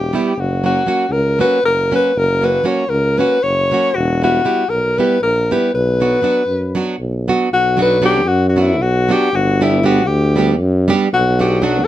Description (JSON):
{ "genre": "balkan folk, Balkan wedding band", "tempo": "234 BPM (eighths)", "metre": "7/8", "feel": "straight", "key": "B harmonic minor", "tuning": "A4 = 440 Hz", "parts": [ { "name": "mellow alto saxophone", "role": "melody", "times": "0.0-11.9 s", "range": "E4 to C#5", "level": "-16 LUFS", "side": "left 2 dB", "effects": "none" }, { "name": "mellow tuba", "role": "bass", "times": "0.0-11.9 s", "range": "E1 to F#2", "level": "-18 LUFS", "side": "equal", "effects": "none" }, { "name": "nylon-string guitar", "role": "accompaniment", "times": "0.1-11.8 s", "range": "F#3 to G4", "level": "-18 LUFS", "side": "right 4 dB", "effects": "none" } ], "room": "light reverb", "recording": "none", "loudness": "-13 LUFS", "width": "side -13 dB against mid", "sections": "0.0-7.5 A section; 7.5-11.9 B section", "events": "none", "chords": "0.4 F#; 4.0 Em; 5.7 Bm; 9.3 G; 11.1 Bm" }